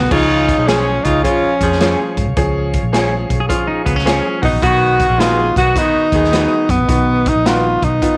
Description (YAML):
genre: uptempo 1960s-style soul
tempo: 106 BPM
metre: 4/4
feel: swing 65% on 8ths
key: unclear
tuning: A4 = 441 Hz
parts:
  - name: breathy tenor saxophone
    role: melody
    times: 0.0-8.2 s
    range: B3 to F#4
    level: -18 LUFS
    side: equal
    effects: none
  - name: clear saxophone section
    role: second line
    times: 0.0-6.7 s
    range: C#3 to G#4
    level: -22 LUFS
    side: equal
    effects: none
  - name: clean electric guitar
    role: riff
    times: 0.0-4.4 s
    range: B3 to G#4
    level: -25 LUFS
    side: equal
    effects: spring reverb
  - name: vintage muted fingered electric bass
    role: bass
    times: 0.0-8.0 s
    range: A#1 to G#2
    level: -22 LUFS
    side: equal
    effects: none
  - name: clear grand piano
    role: accompaniment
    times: 0.1-8.2 s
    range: D#3 to G#4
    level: -24 LUFS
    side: equal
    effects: none
  - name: percussive tonewheel organ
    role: sustained chords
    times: 0.1-8.2 s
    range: G#4 to D#6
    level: -32 LUFS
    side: equal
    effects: none
  - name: swinging big-band drum kit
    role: drums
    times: 0.1-8.2 s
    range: crash cymbal, hi-hat, kick drum, snare drum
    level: -23 LUFS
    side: equal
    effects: none
  - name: electric guitar through a small old amp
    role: stabs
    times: 0.7-7.6 s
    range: D#4 to C#5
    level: -26 LUFS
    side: equal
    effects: ensemble chorus
room: little or no reverb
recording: none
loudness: -15 LUFS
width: mono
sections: 0.1-8.2 A section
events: none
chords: 0.1 C#; 4.3 B